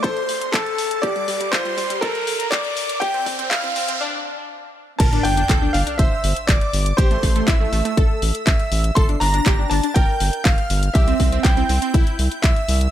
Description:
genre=progressive house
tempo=121 BPM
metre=4/4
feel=straight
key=G dorian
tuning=A4 = 438 Hz
part: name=bright baby grand piano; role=melody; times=0.0-12.9 s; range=A4 to C6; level=-24 LUFS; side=equal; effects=sidechain pumping, tape echo
part: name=soft supersaw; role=second line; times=0.0-12.9 s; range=A5 to C7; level=-31 LUFS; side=right 2 dB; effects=sidechain pumping, tape echo
part: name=analog pluck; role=arpeggios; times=0.0-12.8 s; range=G3 to C5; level=-26 LUFS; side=equal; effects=chorus, sidechain pumping, tape echo
part: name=electronic kick drum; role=drums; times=0.0-12.5 s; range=none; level=-18 LUFS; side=equal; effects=none
part: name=house drum kit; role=drums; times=0.0-12.9 s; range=crash cymbal, handclaps, hi-hat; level=-25 LUFS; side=left 2 dB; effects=none
part: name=riser and sub drop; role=sound effects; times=0.0-7.0 s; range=none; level=-29 LUFS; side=equal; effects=none
part: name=round analog bass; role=bass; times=5.0-12.9 s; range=G1 to C2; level=-21 LUFS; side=equal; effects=sidechain pumping
room=light reverb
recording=high-pass filter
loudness=-17 LUFS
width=side -11 dB against mid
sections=0.0-5.0 A section; 5.0-12.9 B section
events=build-up 0.0-5.0; riser 0.0-4.0; filter sweep on synth pluck 0.0-5.0; filter sweep 0.0-5.0; break 4.0-5.0; drop 5.0-12.9; impact 5.0-7.0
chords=0.0 N.C.; 5.0 G5; 7.0 Am; 9.0 Gm; 10.9 C

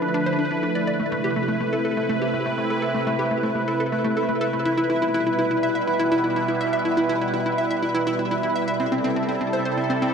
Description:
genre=ambient, sequencer-driven space music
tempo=123 BPM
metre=4/4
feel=straight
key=unclear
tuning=A4 = 440 Hz
part: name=sweeping resonant pad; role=sustained chords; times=0.0-10.1 s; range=B2 to B4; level=-23 LUFS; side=right 1 dB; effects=chorus
part: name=hollow square pluck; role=riff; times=0.0-10.1 s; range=A3 to E5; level=-25 LUFS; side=equal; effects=chorus, cassette tape, tape echo
part: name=pulsing gated texture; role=texture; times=0.0-10.1 s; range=E4 to E5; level=-30 LUFS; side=left 1 dB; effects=chorus, built-in reverb
room=wet plate reverb, RT60 2.4 s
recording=dreamy mix soaked in reverb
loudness=-20 LUFS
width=side -6 dB against mid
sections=0.0-10.1 A section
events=none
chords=0.0 Dm; 1.0 Amadd9; 4.9 Em; 8.8 C6

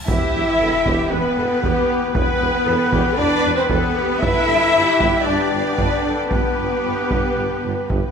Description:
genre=cinematic, epic orchestral film score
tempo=115 BPM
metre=4/4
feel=straight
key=E minor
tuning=A4 = 440 Hz
part: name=warm symphonic violin section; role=melody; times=0.0-8.1 s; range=B4 to E5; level=-28 LUFS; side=left 4 dB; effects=none
part: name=cymbal swell and sub drop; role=sound effects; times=0.0-2.2 s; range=none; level=-30 LUFS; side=equal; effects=none
part: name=mellow hollow silver concert flute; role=second line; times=0.1-8.1 s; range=B4 to E5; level=-25 LUFS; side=left 1 dB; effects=none
part: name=warm symphonic violin section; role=second line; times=0.1-8.1 s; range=B4 to E5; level=-26 LUFS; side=left 3 dB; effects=none
part: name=rich symphonic viola section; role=accompaniment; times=0.1-8.1 s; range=G4 to B4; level=-26 LUFS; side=right 1 dB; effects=none
part: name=dark woodwind section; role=sustained chords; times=0.1-8.1 s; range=B3 to G5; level=-28 LUFS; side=left 1 dB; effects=none
part: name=warm French horn section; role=sustained chords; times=0.1-8.1 s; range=B3 to E4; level=-23 LUFS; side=left 4 dB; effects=none
part: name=mellow tuba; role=bass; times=0.1-8.0 s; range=E1 to G1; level=-28 LUFS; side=right 4 dB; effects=none
part: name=rich symphonic double bass section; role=bass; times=0.1-8.0 s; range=E2 to G2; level=-28 LUFS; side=right 4 dB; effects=none
part: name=warm symphonic cello section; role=bass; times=0.1-8.1 s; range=B3 to E4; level=-24 LUFS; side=right 3 dB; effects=none
part: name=solo taiko drums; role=drums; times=0.1-8.1 s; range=none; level=-25 LUFS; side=equal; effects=none
room=wet scoring stage reverb, RT60 1.7 s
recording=none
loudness=-16 LUFS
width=side -6 dB against mid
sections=0.1-8.1 A section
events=impact 0.1-2.2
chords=0.1 Em; 4.2 G

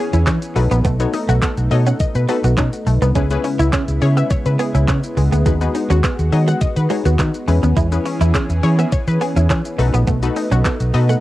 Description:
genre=dance-pop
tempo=104 BPM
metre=4/4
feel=straight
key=unclear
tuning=A4 = 440 Hz
part: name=analog pluck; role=accompaniment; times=0.0-11.2 s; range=C#4 to C#5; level=-24 LUFS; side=left 6 dB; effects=chorus, sidechain pumping, cassette tape
part: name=lush unison pad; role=sustained chords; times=0.0-11.2 s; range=C#3 to G#4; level=-26 LUFS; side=equal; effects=chorus, sidechain pumping, cassette tape
part: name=wide unison pluck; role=arpeggios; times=0.0-11.2 s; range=G#3 to F#5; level=-24 LUFS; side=left 6 dB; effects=sidechain pumping, cassette tape, analog delay
part: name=direct-recorded clean electric guitar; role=riff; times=0.0-11.2 s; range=G#3 to E4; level=-24 LUFS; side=right 6 dB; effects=ensemble chorus, cassette tape
part: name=vintage muted fingered electric bass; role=bass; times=0.1-11.1 s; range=A#1 to E3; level=-16 LUFS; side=equal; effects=sidechain pumping
part: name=pop drum kit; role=drums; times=0.1-11.2 s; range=handclaps, hi-hat, kick drum, shaker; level=-21 LUFS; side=equal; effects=overdrive, cassette tape
room=little or no reverb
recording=home recording on cassette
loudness=-14 LUFS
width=side -16 dB against mid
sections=0.0-11.2 A section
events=none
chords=0.0 E6; 0.6 B7; 3.2 C#m7; 5.5 G#m7/D#; 7.5 E6; 9.8 B7

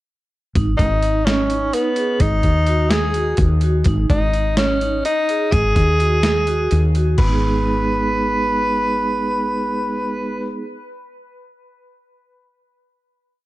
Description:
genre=progressive instrumental, band music in an uneven meter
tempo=253 BPM (eighths)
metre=7/8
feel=straight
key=G# minor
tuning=A4 = 440 Hz
part: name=vibraphone with medium mallets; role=arpeggios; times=0.6-10.7 s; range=G#3 to G#4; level=-24 LUFS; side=right 3 dB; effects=none
part: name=woody fretless electric bass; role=bass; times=0.6-10.5 s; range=G#1 to D#2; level=-19 LUFS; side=equal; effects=none
part: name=boom bap sampler-style drum kit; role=drums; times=0.6-7.3 s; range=crash cymbal, hi-hat, kick drum, snare drum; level=-21 LUFS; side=equal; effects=overdrive
part: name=clear tenor saxophone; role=melody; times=0.8-10.5 s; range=B3 to B4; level=-20 LUFS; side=equal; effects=analog delay
room=light reverb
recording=dark, warm production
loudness=-16 LUFS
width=side -17 dB against mid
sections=0.6-7.2 A section; 7.2-10.5 final chord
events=kick and snare drop out 6.7-7.2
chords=0.6 G#5; 7.2 G#m

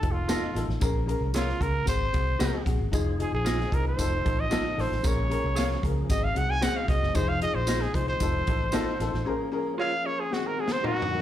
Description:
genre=uptempo 1960s-style soul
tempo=114 BPM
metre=4/4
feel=straight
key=unclear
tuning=A4 = 440 Hz
part: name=clear trumpet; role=melody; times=0.0-11.2 s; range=F4 to Ab5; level=-30 LUFS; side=right 1 dB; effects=slapback echo
part: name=dark upright piano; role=accompaniment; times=0.0-11.2 s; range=C4 to Bb4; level=-32 LUFS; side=left 6 dB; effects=slapback echo
part: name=vintage muted fingered electric bass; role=bass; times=0.0-9.2 s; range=F1 to Db2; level=-29 LUFS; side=equal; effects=none
part: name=swinging big-band drum kit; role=drums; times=0.0-11.1 s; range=hi-hat, kick drum, snare drum, toms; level=-30 LUFS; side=equal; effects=none
part: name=electric guitar through a small old amp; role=stabs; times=0.3-11.0 s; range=F4 to F5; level=-33 LUFS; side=right 4 dB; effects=slapback echo
part: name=tambourine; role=percussion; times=0.3-8.9 s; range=none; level=-39 LUFS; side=right 2 dB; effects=none
part: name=percussive tonewheel organ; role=sustained chords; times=2.9-11.2 s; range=Eb3 to A4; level=-39 LUFS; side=right 1 dB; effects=slow rotary speaker, overdrive, chorus vibrato
room=light reverb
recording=live gig heard through the venue's PA, club reverb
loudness=-24 LUFS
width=side -11 dB against mid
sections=0.0-11.2 A section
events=trumpet solo 0.0-11.2; drum fill 10.3-11.2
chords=0.0 F7; 0.8 Bbm7; 1.9 Ab7; 2.9 Fm7; 4.0 F7; 5.0 Bbm7; 6.1 Ab7; 7.2 Fm7; 8.2 F7; 9.3 Bbm7; 10.3 Ab7

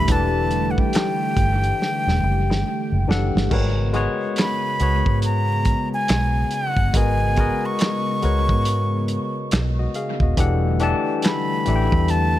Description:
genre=R&B, neo-soul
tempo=70 BPM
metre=4/4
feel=swing 62% on 16ths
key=unclear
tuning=A4 = 437 Hz
part: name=breathy concert flute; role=melody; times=0.0-12.4 s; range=F#5 to C#6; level=-25 LUFS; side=equal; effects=analog delay
part: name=barky tine electric piano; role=accompaniment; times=0.0-12.4 s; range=E3 to A5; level=-25 LUFS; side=left 5 dB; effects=overdrive
part: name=hollow soft pad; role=sustained chords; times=0.0-12.4 s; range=C#3 to G4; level=-28 LUFS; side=right 1 dB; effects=chorus
part: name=vintage muted fingered electric bass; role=bass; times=0.0-12.4 s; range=D#1 to G#2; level=-21 LUFS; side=equal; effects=none
part: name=warm soul drum kit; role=drums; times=0.1-12.3 s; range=crash cymbal, handclaps, hi-hat, kick drum, snare drum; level=-23 LUFS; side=right 1 dB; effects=analog delay
room=small room ambience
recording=echo-heavy mix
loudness=-18 LUFS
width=side -13 dB against mid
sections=0.0-3.5 A section; 3.5-12.4 B section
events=drum fill 1.8-3.5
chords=0.0 Em11; 3.5 G#m11; 10.4 Em11

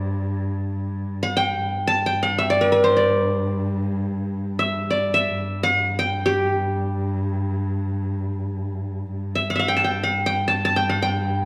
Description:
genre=Arabic maqam ensemble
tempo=free time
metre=none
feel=none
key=G maqam rast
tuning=A4 = 440 Hz
part: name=qanun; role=melody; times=0.0-11.5 s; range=G4 to A5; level=-22 LUFS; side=equal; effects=none
part: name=dark cello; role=drone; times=0.0-11.5 s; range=G2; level=-28 LUFS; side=equal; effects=none
room=wet recital hall reverb, RT60 1.8 s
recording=recorded in a church or concert hall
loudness=-22 LUFS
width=mono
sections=0.0-9.1 A section; 9.1-11.5 A section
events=none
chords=none

